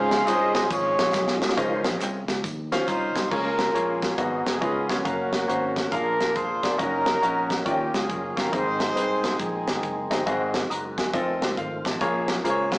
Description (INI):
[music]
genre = uptempo gospel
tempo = 138 BPM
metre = 4/4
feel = swing 64% on 8ths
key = Db major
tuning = A4 = 440 Hz
[part]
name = warm horn section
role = melody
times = 0.0-10.2 s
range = Bb3 to F5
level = -25 LUFS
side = equal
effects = none
[part]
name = clear concert grand piano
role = accompaniment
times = 0.0-12.8 s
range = Ab2 to Eb6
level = -27 LUFS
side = left 1 dB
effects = none
[part]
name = tonewheel organ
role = sustained chords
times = 0.0-12.8 s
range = Eb3 to Eb5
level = -34 LUFS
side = equal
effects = none
[part]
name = fingered electric bass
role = bass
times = 0.0-12.8 s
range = Fb1 to Eb2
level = -35 LUFS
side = equal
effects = none
[part]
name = tight funk drum kit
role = drums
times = 0.1-12.8 s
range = crash cymbal, hi-hat, kick drum, ride cymbal, snare drum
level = -28 LUFS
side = equal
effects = none
[part]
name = tambourine and handclaps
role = percussion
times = 0.1-3.2 s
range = none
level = -38 LUFS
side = right 1 dB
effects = none
[part]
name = clean electric guitar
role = second line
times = 12.7-12.8 s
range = Ab3 to F4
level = -29 LUFS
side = right 1 dB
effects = none
[sound]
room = wet stone room reverb, RT60 1.0 s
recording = rough rehearsal-room recording, warm saturation, small speaker sound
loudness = -22 LUFS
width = side -22 dB against mid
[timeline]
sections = 0.0-1.6 A section; 1.6-3.3 B section; 3.3-12.8 C section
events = drum fill 1.1-1.6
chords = 0.0 Dbmaj9; 3.3 Db6; 4.2 Abm7; 4.6 Db9; 5.1 Gbmaj7; 5.9 Bb7; 6.8 Ebm7/Gb; 7.7 Eb9; 8.5 Ab; 10.3 Ab7; 11.1 F7; 12.0 Bbm7